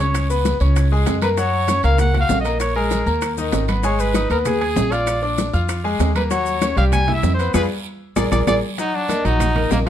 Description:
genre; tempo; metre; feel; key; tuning
latin, salsa; 194 BPM; 4/4; straight; unclear; A4 = 438 Hz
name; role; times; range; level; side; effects
warm trumpet; melody; 0.0-9.9 s; Bb3 to Ab5; -22 LUFS; equal; none
bright concert grand piano; accompaniment; 0.0-9.9 s; Eb3 to Ab6; -23 LUFS; left 3 dB; none
upright bass; bass; 0.0-9.9 s; Ab1 to Gb2; -20 LUFS; right 1 dB; none
congas; percussion; 0.0-9.9 s; none; -28 LUFS; equal; none
bongos; percussion; 0.1-9.9 s; none; -28 LUFS; left 6 dB; none
claves; percussion; 0.1-9.6 s; none; -36 LUFS; right 4 dB; none
guiro; percussion; 0.1-9.9 s; none; -36 LUFS; right 8 dB; none
maracas; percussion; 0.1-9.9 s; none; -37 LUFS; left 8 dB; none
timbales; percussion; 0.1-9.9 s; none; -29 LUFS; right 8 dB; none
room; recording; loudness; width
light reverb; dark, warm production; -16 LUFS; side -10 dB against mid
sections
0.0-8.8 A section; 8.8-9.9 B section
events
drum fill 7.5-8.8; band accent 7.5-8.8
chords
0.1 Db5; 1.4 Gb; 2.6 Bbm7; 3.2 Eb5; 3.8 Abmadd9; 5.1 Bb7; 6.3 Ebm7; 6.9 C; 7.5 Fdim; 8.2 Bb7; 8.8 Ebm

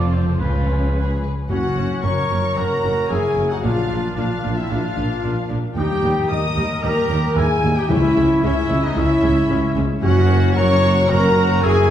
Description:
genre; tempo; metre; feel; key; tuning
cinematic, heroic adventure film score; 112 BPM; 4/4; straight; unclear; A4 = 440 Hz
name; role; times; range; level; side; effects
warm symphonic violin section; melody; 0.0-11.9 s; Ab4 to D#6; -31 LUFS; left 3 dB; none
mellow oboe; second line; 0.0-11.9 s; B3 to D5; -28 LUFS; equal; none
rich symphonic violin section; second line; 0.0-11.9 s; F4 to D#6; -30 LUFS; left 2 dB; none
warm symphonic viola section; accompaniment; 0.0-11.9 s; F#3 to F#4; -30 LUFS; equal; none
dark French horn section; sustained chords; 0.0-11.9 s; Ab3 to D#5; -22 LUFS; left 2 dB; none
concert harp; arpeggios; 0.0-11.9 s; F#2 to C#6; -28 LUFS; left 4 dB; none
rich symphonic cello section; bass; 0.0-11.9 s; Db2 to A#2; -23 LUFS; right 1 dB; none
warm symphonic double bass section; bass; 0.0-11.9 s; F1 to D#2; -25 LUFS; right 1 dB; none
clear trumpet section; stabs; 1.5-11.9 s; D#4 to G#5; -25 LUFS; equal; none
dark tuba; bass; 1.5-11.9 s; F#1 to D#2; -24 LUFS; right 1 dB; none
timpani; percussion; 7.9-8.7 s; C#3; -26 LUFS; equal; none
room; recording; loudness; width
wet recital hall reverb, RT60 1.8 s; heard from further back in the room; -16 LUFS; side -10 dB against mid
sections
0.0-1.5 A section; 1.5-11.9 B section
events
none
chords
0.4 Db7; 1.5 F#; 3.6 A#; 5.8 D#; 7.9 C#m; 10.0 F#

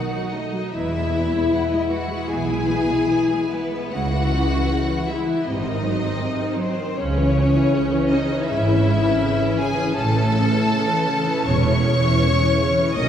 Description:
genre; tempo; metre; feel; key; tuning
classical, slow romantic movement for string orchestra; 69-82 BPM; 4/4; rubato; unclear; A4 = 440 Hz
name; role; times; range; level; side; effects
bright symphonic violin section; melody; 0.0-13.1 s; B4 to D#6; -28 LUFS; left 3 dB; none
clear studio violin section; second line; 0.0-13.1 s; B3 to D#5; -24 LUFS; left 2 dB; none
rich symphonic viola section; accompaniment; 0.0-13.1 s; B#2 to E4; -23 LUFS; left 1 dB; none
clear symphonic double bass section; bass; 0.7-13.1 s; E1 to C#2; -25 LUFS; right 2 dB; none
rich symphonic cello section; bass; 0.7-13.1 s; C#2 to C#3; -25 LUFS; right 1 dB; none
room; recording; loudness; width
wet scoring stage reverb, RT60 1.7 s; heard from further back in the room, studio reverb; -18 LUFS; side -9 dB against mid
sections
0.0-13.1 A section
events
none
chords
0.0 B7 (rootless); 0.7 E; 3.9 C#m; 5.5 G#7; 7.0 C#m; 10.0 A

